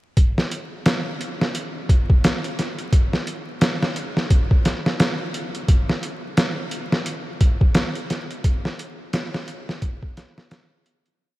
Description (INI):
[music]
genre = trip hop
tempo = 87 BPM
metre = 4/4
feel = swing 59% on 16ths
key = none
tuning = none
[part]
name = trip hop sampler-style drum kit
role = drums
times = 0.2-11.2 s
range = hi-hat, kick drum, snare drum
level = -19 LUFS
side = equal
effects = none
[sound]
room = moderate huge ambient reverb, RT60 7.5 s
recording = dreamy mix soaked in reverb, vinyl crackle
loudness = -20 LUFS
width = side -17 dB against mid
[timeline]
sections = 0.2-11.2 groove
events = fade-out 7.5-11.2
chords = none